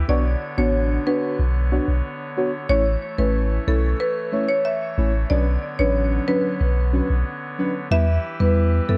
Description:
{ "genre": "dancehall", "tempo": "92 BPM", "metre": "4/4", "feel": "straight", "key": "B minor", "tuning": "A4 = 440 Hz", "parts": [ { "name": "pipe organ, soft reed", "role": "sustained chords", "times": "0.0-9.0 s", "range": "D3 to C#5", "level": "-34 LUFS", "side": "equal", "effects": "none" }, { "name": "punchy sub bass", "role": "bass", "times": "0.0-9.0 s", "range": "A1 to F#2", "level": "-22 LUFS", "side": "equal", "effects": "none" }, { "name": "marimba with medium hard mallets", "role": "melody", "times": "0.1-9.0 s", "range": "A4 to E5", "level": "-27 LUFS", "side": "equal", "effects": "tape echo" }, { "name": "deep mellow chord stab", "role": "accompaniment", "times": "0.1-9.0 s", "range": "F#3 to C#5", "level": "-27 LUFS", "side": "equal", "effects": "chorus, phaser" } ], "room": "light reverb, small room ambience", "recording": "worn, warbling old tape, cassette tape, warbly pitch drift", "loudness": "-21 LUFS", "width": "mono", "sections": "0.1-9.0 A section", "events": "none", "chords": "0.1 Bmadd9; 2.7 A; 5.3 Bmadd9; 7.9 Em", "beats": "| 0.09 0.74 1.39 2.04 | 2.69 3.35 4.00 4.65 | 5.30 5.96 6.61 7.26 | 7.91 8.56" }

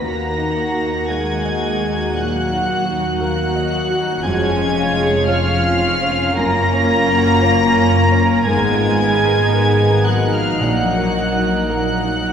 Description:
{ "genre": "cinematic, emotional film score for orchestra", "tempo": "56 BPM", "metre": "4/4", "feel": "rubato", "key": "Eb minor", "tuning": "A4 = 440 Hz", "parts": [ { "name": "warm studio violin section", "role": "melody", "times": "0.0-12.3 s", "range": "F6 to Bb6", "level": "-24 LUFS", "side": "equal", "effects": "none" }, { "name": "bright flute section", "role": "second line", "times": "0.0-12.3 s", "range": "F5 to Bb5", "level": "-22 LUFS", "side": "equal", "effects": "none" }, { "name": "rich studio violin section", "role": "second line", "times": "0.0-12.3 s", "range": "Ab3 to Gb5", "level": "-26 LUFS", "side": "left 2 dB", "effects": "none" }, { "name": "rich studio viola section", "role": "accompaniment", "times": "0.0-12.3 s", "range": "Bb3 to Gb4", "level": "-25 LUFS", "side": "right 2 dB", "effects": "none" }, { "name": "warm grand piano", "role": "accompaniment", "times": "0.0-12.3 s", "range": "Bb1 to Eb5", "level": "-24 LUFS", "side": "left 1 dB", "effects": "none" }, { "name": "mellow French horn section", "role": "sustained chords", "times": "0.0-12.3 s", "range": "F4 to Bb4", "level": "-23 LUFS", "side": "equal", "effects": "none" }, { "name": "dark studio double bass section", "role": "bass", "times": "0.0-12.3 s", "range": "F1 to Eb2", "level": "-22 LUFS", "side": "equal", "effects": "none" }, { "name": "warm studio cello section", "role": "bass", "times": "0.0-12.3 s", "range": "F3 to Bb3", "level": "-23 LUFS", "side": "equal", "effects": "none" }, { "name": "timpani", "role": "percussion", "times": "10.6-12.2 s", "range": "Bb2", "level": "-27 LUFS", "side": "equal", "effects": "none" } ], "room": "wet concert hall reverb, RT60 2.1 s", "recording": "recorded in a church or concert hall", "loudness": "-14 LUFS", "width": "side -8 dB against mid", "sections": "0.0-12.3 A section", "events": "none", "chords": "0.0 Ebm; 4.2 Db/F; 6.4 Gbmaj7; 8.5 Abmadd9; 10.6 Ebm/Bb", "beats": "| 0.02 1.08 2.15 3.20 | 4.24 5.27 6.36 7.42 | 8.47 9.53 10.61 11.70" }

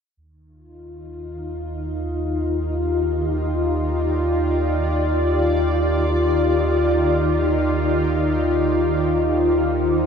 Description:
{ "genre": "ambient", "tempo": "free time", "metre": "none", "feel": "none", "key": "Eb major", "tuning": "A4 = 440 Hz", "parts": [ { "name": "shimmering ambient pad", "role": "sustained chords", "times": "0.9-10.1 s", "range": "Eb3 to D5", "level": "-19 LUFS", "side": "left 1 dB", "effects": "chorus, built-in reverb" }, { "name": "warm sub bass", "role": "bass", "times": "0.2-10.1 s", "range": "Eb2", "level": "-24 LUFS", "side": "right 1 dB", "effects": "none" } ], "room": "wet cathedral reverb, RT60 4.9 s", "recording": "in a vast, echoing space", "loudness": "-18 LUFS", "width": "side -7 dB against mid", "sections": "0.2-10.1 A section", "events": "none", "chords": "0.2 Ebmaj7", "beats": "free time" }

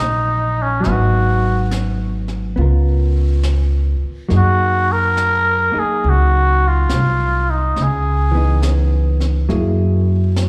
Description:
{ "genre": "jazz ballad", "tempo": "69 BPM", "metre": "4/4", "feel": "swing 66% on 8ths", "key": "unclear", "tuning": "A4 = 440 Hz", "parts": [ { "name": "trumpet with cup mute", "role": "melody", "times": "0.0-8.7 s", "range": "Db4 to Bb4", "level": "-20 LUFS", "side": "equal", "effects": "slapback echo" }, { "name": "hollow-body jazz guitar", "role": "accompaniment", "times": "0.0-10.5 s", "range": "Eb3 to Bb4", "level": "-26 LUFS", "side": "equal", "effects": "slapback echo" }, { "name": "upright bass", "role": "bass", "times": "0.0-10.5 s", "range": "Ab1 to Gb2", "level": "-18 LUFS", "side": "equal", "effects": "none" }, { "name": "jazz brush drum kit", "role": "drums", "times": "0.8-10.5 s", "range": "brushed snare drum, hi-hat, snare drum", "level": "-34 LUFS", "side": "equal", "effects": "slapback echo" } ], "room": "light reverb", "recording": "live gig heard through the venue's PA, club reverb", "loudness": "-16 LUFS", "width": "mono", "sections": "0.0-10.5 A section", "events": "none", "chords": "0.0 Ebm7; 0.8 Abm7; 2.6 Db6; 4.3 Gb69; 7.8 Dbm9; 9.5 Gb9", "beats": "| 0.84 1.71 2.57 3.44 | 4.30 5.17 6.03 6.90 | 7.77 8.63 9.50 10.38" }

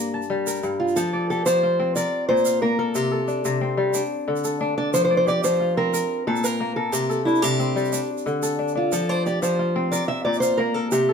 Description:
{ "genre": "west african traditional, West African string and xylophone music", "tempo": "120 BPM (dotted quarters)", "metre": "12/8", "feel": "straight", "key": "F major", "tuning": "A4 = 439 Hz", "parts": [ { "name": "fingerpicked acoustic archtop guitar", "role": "melody", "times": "0.0-11.1 s", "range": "E4 to E5", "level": "-22 LUFS", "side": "right 1 dB", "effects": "none" }, { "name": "kora", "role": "arpeggios", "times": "0.0-11.1 s", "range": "G2 to A5", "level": "-23 LUFS", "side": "left 2 dB", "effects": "none" }, { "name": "egg shaker", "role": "percussion", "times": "0.2-11.0 s", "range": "none", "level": "-32 LUFS", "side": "right 6 dB", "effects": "none" } ], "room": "moderate studio reverb, RT60 0.6 s", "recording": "band playing live in one room", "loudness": "-20 LUFS", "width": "side -6 dB against mid", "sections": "1.0-11.1 A section", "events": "none", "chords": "0.0 Gm; 1.0 F; 2.0 Bb; 2.9 C5; 3.9 D5; 4.9 F5; 5.9 Bb5; 6.9 C5; 7.9 D5; 8.9 F5; 9.9 Bb5", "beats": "0.47 | 0.96 1.46 1.96 2.45 | 2.95 3.45 3.94 4.44 | 4.94 5.44 5.93 6.43 | 6.93 7.43 7.93 8.43 | 8.93 9.42 9.92 10.42 | 10.92" }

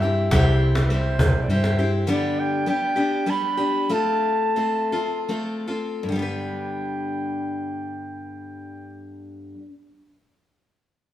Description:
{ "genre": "acoustic folk duo or small band", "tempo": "72-103 BPM", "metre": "3/4", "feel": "straight", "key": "G mixolydian", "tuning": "A4 = 440 Hz", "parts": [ { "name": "warm clarinet", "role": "melody", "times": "0.0-9.1 s", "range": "B4 to B5", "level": "-27 LUFS", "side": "right 3 dB", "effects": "none" }, { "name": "picked steel-string acoustic guitar", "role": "accompaniment", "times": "0.0-9.7 s", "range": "G2 to B4", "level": "-25 LUFS", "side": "left 3 dB", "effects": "none" }, { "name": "hollow-body short-scale fingered electric bass", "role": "bass", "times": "0.0-2.0 s", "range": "C2 to G2", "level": "-21 LUFS", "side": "equal", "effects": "none" }, { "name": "cajon", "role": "percussion", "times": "0.3-1.8 s", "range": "none", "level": "-24 LUFS", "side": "equal", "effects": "none" } ], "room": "wet large studio reverb, RT60 1.2 s", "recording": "band playing live in one room", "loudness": "-20 LUFS", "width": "side -12 dB against mid", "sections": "0.0-6.1 A section; 6.1-11.1 B section", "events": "slowing down 2.1-6.1", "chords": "0.0 C; 2.1 G; 3.9 F/A; 6.1 G", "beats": "| 0.31 0.90 1.48 | 2.07 2.66 3.27 | 3.90 4.57 5.29 | 6.08 6.92 7.75 | 8.58 9.41" }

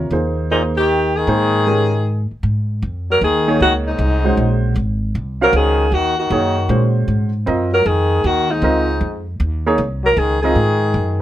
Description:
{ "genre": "modal jazz", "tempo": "155 BPM", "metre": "3/4", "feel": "swing 66% on 8ths", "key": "Ab mixolydian", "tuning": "A4 = 445 Hz", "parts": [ { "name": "warm baby grand piano", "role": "accompaniment", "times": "0.0-10.6 s", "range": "Ab3 to F5", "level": "-19 LUFS", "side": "right 2 dB", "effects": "none" }, { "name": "upright bass", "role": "bass", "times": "0.0-11.2 s", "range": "Ab1 to Bb2", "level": "-19 LUFS", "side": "equal", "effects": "none" }, { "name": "breathy alto saxophone", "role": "melody", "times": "0.5-11.2 s", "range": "Eb4 to Bb4", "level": "-18 LUFS", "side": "equal", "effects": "none" }, { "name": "bright trombone", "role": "second line", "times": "0.5-11.2 s", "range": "Ab2 to Gb3", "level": "-22 LUFS", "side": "left 4 dB", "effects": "none" } ], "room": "little or no reverb", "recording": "none", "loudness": "-14 LUFS", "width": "side -13 dB against mid", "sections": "0.0-2.4 A section; 2.4-11.2 B section", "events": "none", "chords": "0.0 Absus2/Eb; 2.4 Ab7sus4", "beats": "| 0.12 0.51 0.90 | 1.28 1.67 2.06 | 2.44 2.83 3.22 | 3.60 3.99 4.38 | 4.76 5.15 5.54 | 5.92 6.31 6.70 | 7.08 7.47 7.86 | 8.24 8.63 9.01 | 9.40 9.79 10.17 | 10.56 10.94" }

